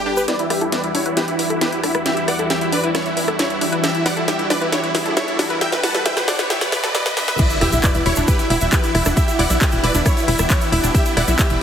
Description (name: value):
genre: uplifting trance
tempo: 135 BPM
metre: 4/4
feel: straight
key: E minor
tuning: A4 = 442 Hz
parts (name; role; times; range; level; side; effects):
- supersaw chords; melody; 0.0-11.6 s; E4 to A5; -21 LUFS; equal; sidechain pumping, low-pass filter, digital delay
- analog string pad; sustained chords; 0.0-11.6 s; E2 to G4; -26 LUFS; equal; ensemble chorus, sidechain pumping
- tight sequencer bass; bass; 0.0-0.3, 7.6-11.6 s; E1 to B1; -20 LUFS; equal; sidechain pumping
- wide unison pluck; arpeggios; 0.1-11.5 s; D4 to E5; -25 LUFS; left 1 dB; cassette tape, sidechain pumping, digital delay
- egg shaker; percussion; 0.2-0.3, 7.4-11.6 s; none; -30 LUFS; right 2 dB; none
- house drum kit; drums; 0.3-11.6 s; crash cymbal, handclaps, hi-hat, rim click, snare drum; -22 LUFS; equal; low-pass filter on snare, low-pass filter on hats, low-pass filter on cymbals
- riser and impact; sound effects; 1.9-9.2 s; none; -28 LUFS; equal; none
- electronic kick drum; drums; 7.4-11.5 s; none; -18 LUFS; equal; none
room: light reverb, digital ambience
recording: heavily compressed radio sound, high-pass filter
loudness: -16 LUFS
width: side -8 dB against mid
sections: 0.3-7.4 A section; 7.4-11.6 B section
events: build-up 0.3-7.4; drum fill 0.3-7.4; filter sweep on supersaw synth 0.3-7.4; filter sweep on synth pluck 0.3-7.4; filter sweep 0.3-7.4; drop 7.4-11.6; impact 7.4-9.2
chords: 0.3 Em7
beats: | 0.28 0.72 1.17 1.61 | 2.06 2.50 2.95 3.39 | 3.84 4.28 4.72 5.17 | 5.61 6.06 6.50 6.95 | 7.39 7.84 8.28 8.72 | 9.17 9.61 10.06 10.50 | 10.95 11.39